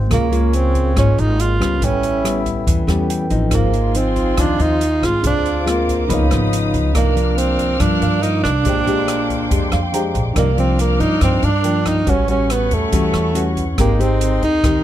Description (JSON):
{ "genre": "bossa nova", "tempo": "140 BPM", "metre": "4/4", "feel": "straight", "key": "unclear", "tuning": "A4 = 440 Hz", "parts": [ { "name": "reedy wooden-headed alto flute", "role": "second line", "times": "0.0-14.8 s", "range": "Bb3 to F4", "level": "-27 LUFS", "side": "left 5 dB", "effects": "none" }, { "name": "mellow tine electric piano", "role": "accompaniment", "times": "0.0-14.8 s", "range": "Bb3 to Cb6", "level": "-27 LUFS", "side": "right 3 dB", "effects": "medium tremolo" }, { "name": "nylon-string guitar", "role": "accompaniment", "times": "0.0-14.8 s", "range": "F2 to Bb4", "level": "-22 LUFS", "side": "left 3 dB", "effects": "none" }, { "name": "upright bass", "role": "bass", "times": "0.0-14.8 s", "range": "Ab1 to G2", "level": "-19 LUFS", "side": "equal", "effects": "none" }, { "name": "breathy tenor saxophone", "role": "melody", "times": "0.1-14.8 s", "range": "A3 to F4", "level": "-20 LUFS", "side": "right 4 dB", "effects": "none" }, { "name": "open jazz drum kit", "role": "drums", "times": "0.1-14.7 s", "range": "hi-hat, kick drum, rim click", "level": "-23 LUFS", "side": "equal", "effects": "none" }, { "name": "warm symphonic string section", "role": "sustained chords", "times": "3.5-14.8 s", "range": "Ab4 to F6", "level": "-28 LUFS", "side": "left 3 dB", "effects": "none" } ], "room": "little or no reverb", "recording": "close, detailed microphones", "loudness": "-14 LUFS", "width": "side -12 dB against mid", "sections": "0.0-10.4 A section; 10.4-14.8 B section", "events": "tine electric piano fill 2.9-3.5, 9.5-10.4", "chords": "0.1 Db6; 1.8 A9; 3.5 Ab6; 5.2 Dm7b5; 6.1 Db9; 6.9 Cm11; 8.7 Bb13; 10.4 Cm11; 12.1 A13; 13.8 Abmaj9" }